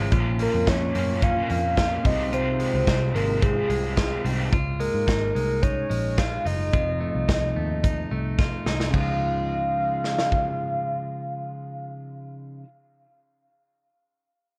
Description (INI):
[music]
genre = jangly indie pop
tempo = 109 BPM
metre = 4/4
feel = straight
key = Db major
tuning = A4 = 436 Hz
[part]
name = crunchy overdriven guitar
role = accompaniment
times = 0.0-4.5 s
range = Bb2 to F4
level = -33 LUFS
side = equal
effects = harmonic tremolo
[part]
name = clean electric guitar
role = arpeggios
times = 0.0-12.7 s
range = F2 to F4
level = -32 LUFS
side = equal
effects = none
[part]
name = vintage muted picked electric bass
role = bass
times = 0.0-12.6 s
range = F1 to Ab2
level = -30 LUFS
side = equal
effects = none
[part]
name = big rock drum kit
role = drums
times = 0.1-10.4 s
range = crash cymbal, hi-hat, kick drum, snare drum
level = -29 LUFS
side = equal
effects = none
[part]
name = soft octave-layered synth lead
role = melody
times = 0.4-11.9 s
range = Ab4 to F5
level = -29 LUFS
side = equal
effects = chorus
[sound]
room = light reverb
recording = worn, warbling old tape, cassette tape, warbly pitch drift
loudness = -24 LUFS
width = mono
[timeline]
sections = 0.1-8.9 A section; 8.9-11.1 B section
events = drum fill 8.4-8.9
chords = 0.1 Bbm; 2.0 Fm7; 4.5 Dbadd9; 6.7 F7; 8.9 Dbadd9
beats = | 0.12 0.67 1.22 1.77 | 2.32 2.87 3.42 3.97 | 4.52 5.07 5.62 6.18 | 6.73 7.28 7.83 8.38 | 8.94 9.49 10.04 10.60